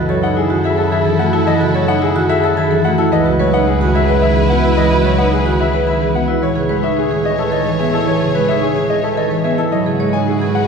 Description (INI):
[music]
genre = classical, minimalist pattern music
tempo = 109 BPM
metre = 3/4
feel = straight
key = F# dorian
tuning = A4 = 437 Hz
[part]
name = buzzing marimba with soft mallets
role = accompaniment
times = 0.0-10.6 s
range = C#3 to B3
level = -19 LUFS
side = right 1 dB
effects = none
[part]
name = rich symphonic string section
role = sustained chords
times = 0.0-10.7 s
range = E4 to C#5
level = -23 LUFS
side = equal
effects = none
[part]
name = vibraphone with medium hard mallets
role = arpeggios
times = 0.0-10.6 s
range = D#4 to C#5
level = -18 LUFS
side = right 3 dB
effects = none
[part]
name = warm double bass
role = bass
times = 0.0-10.7 s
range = C#2 to A2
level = -20 LUFS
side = right 1 dB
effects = none
[part]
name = bright concert grand piano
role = melody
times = 0.1-10.7 s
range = G#4 to G#5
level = -18 LUFS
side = left 4 dB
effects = none
[sound]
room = wet cathedral reverb, RT60 5.6 s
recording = heard from further back in the room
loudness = -13 LUFS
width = side -6 dB against mid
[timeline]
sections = 0.0-10.7 A section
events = none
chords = 0.0 F#m9; 3.1 C#m9; 6.4 Amaj9; 9.7 G#m7